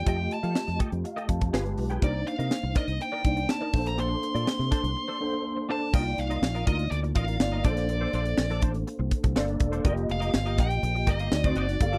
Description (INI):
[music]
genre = polished 1980s jazz-funk pop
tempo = 123 BPM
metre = 4/4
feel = straight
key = C dorian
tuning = A4 = 440 Hz
[part]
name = nasal lead guitar with a parked wah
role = melody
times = 0.0-12.0 s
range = D5 to C6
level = -35 LUFS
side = equal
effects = overdrive, slapback echo
[part]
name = mellow tine electric piano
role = accompaniment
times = 0.0-12.0 s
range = Ab3 to A5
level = -34 LUFS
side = equal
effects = ensemble chorus
[part]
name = fingered electric bass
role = bass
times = 0.0-12.0 s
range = E1 to F3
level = -32 LUFS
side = equal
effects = none
[part]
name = semi-hollow electric guitar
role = riff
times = 0.1-12.0 s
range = Bb3 to G5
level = -39 LUFS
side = equal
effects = ensemble chorus
[part]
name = crisp fusion drum kit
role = drums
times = 0.1-12.0 s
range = crash cymbal, hi-hat, kick drum, snare drum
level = -28 LUFS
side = equal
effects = none
[sound]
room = little or no reverb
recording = dry, close 1970s-style studio recording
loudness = -27 LUFS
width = mono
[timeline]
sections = 0.0-5.9 A section; 5.9-12.0 B section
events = break 5.0-5.9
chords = 0.1 F9; 1.5 G7b9; 2.0 Cm9; 3.7 Bbmaj9; 5.9 Cm11; 7.7 Bbmaj9; 9.8 F9sus4; 11.3 D7b9